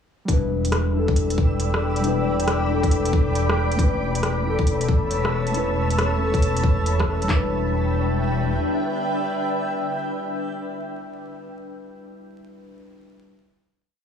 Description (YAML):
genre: future garage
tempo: 137 BPM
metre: 4/4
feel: swing 65% on 16ths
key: E dorian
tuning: A4 = 440 Hz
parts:
  - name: muted felt-like synth keys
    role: accompaniment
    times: 0.3-13.3 s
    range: G3 to B4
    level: -27 LUFS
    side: left 2 dB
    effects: chorus, sidechain pumping, tape echo
  - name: granular cloud pad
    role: sustained chords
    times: 1.0-10.6 s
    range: D4 to E6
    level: -26 LUFS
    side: left 1 dB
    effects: built-in reverb, sidechain pumping
  - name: dark detuned saw bass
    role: bass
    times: 0.3-8.6 s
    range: E1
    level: -24 LUFS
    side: equal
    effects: tube saturation, sidechain pumping
  - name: organic electronic drum kit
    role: drums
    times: 0.3-7.4 s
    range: handclaps, kick drum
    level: -19 LUFS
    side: equal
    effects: none
  - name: organic electronic drum kit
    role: drums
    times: 0.3-7.3 s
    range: hi-hat, rim click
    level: -28 LUFS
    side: left 1 dB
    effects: none
room: light reverb, digital ambience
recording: vinyl crackle, studio reverb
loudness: -20 LUFS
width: side -8 dB against mid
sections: 0.3-7.3 groove; 7.3-10.8 final chord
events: none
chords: 0.3 Em7; 3.8 Aadd9/E; 7.3 Em7